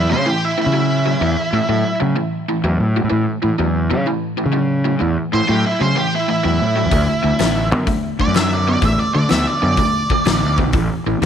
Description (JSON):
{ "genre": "blues rock power trio and southern rock", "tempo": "126 BPM", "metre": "4/4", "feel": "swing 68% on 8ths", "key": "A major", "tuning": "A4 = 440 Hz", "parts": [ { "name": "octave-fuzz lead guitar", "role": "melody", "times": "0.0-2.0, 5.3-10.6 s", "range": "E4 to E5", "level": "-20 LUFS", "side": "right 2 dB", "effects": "distortion" }, { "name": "overdriven electric guitar", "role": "riff", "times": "0.0-11.3 s", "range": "A2 to B3", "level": "-20 LUFS", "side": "equal", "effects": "none" }, { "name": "fuzz fingered electric bass", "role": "bass", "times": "0.0-11.3 s", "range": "A1 to D3", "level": "-18 LUFS", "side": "equal", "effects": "overdrive" }, { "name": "huge arena drum kit", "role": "drums", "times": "6.9-11.3 s", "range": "hi-hat, kick drum, snare drum", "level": "-20 LUFS", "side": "left 2 dB", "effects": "none" } ], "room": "light reverb, studio reverb", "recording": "1960s-style stereo", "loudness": "-15 LUFS", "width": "side -8 dB against mid", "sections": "0.0-11.3 A section", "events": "none", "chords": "0.0 A; 6.9 D; 10.7 A5" }